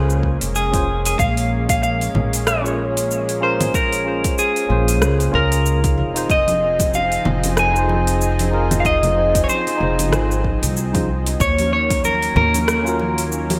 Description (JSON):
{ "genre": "sunset chillout", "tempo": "94 BPM", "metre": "4/4", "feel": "swing 57% on 16ths", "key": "Bb minor", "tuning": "A4 = 438 Hz", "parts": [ { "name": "clean electric guitar", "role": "melody", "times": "0.0-13.6 s", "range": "Ab4 to Ab5", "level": "-23 LUFS", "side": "equal", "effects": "digital delay" }, { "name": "tine electric piano", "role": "accompaniment", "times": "0.0-13.6 s", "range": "Db4 to F5", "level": "-27 LUFS", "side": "equal", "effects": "none" }, { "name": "lush unison pad", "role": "sustained chords", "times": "0.0-13.6 s", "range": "Eb3 to Ab4", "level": "-29 LUFS", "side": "equal", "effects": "chorus" }, { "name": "upright bass", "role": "bass", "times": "0.0-13.6 s", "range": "F1 to Eb2", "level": "-23 LUFS", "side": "equal", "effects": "none" }, { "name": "deep house drum kit", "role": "drums", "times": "0.1-13.6 s", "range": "cabasa, congas, hi-hat, rim click", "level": "-26 LUFS", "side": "equal", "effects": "overdrive, gated reverb" }, { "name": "electronic kick drum", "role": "drums", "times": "0.2-12.0 s", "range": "none", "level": "-25 LUFS", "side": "equal", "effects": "overdrive" }, { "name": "congas", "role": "percussion", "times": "6.3-13.6 s", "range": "none", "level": "-30 LUFS", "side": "equal", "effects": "none" } ], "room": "moderate plate reverb, RT60 1.8 s, digital ambience", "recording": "bright 1980s-style digital production", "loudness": "-18 LUFS", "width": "mono", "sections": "0.0-13.6 A section", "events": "none", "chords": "0.0 Bbm7; 6.0 Fm7; 11.4 Ebm7" }